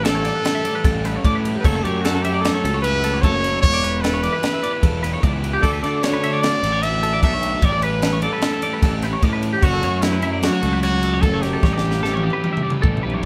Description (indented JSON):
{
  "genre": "math rock and midwest emo",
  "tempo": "150 BPM",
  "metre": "5/4",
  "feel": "straight",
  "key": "unclear",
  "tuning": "A4 = 436 Hz",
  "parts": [
    { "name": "clear trumpet", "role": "melody", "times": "0.0-13.2 s", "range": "E4 to E5", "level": "-25 LUFS", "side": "equal", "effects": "none" },
    { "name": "twelve-string electric guitar", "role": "arpeggios", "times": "0.0-13.2 s", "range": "G4 to E5", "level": "-28 LUFS", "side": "equal", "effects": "none" },
    { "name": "crunchy overdriven guitar", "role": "riff", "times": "0.0-13.3 s", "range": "A2 to G4", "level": "-29 LUFS", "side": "equal", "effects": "none" },
    { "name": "fuzz picked electric bass", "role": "bass", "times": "0.0-13.2 s", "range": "E1 to D3", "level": "-25 LUFS", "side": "equal", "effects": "overdrive" },
    { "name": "crisp fusion drum kit", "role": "drums", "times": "0.0-13.3 s", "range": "crash cymbal, kick drum, ride cymbal, snare drum, toms", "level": "-24 LUFS", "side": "equal", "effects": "none" }
  ],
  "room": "light reverb",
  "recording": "band playing live in one room",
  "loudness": "-19 LUFS",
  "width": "mono",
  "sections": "0.0-13.3 A section",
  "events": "drum fill 11.6-13.3",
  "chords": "0.0 A9sus4; 1.6 F#m7; 3.6 Em7; 5.6 Dmaj13; 7.6 A9sus4; 9.6 F#m; 11.6 A9sus4"
}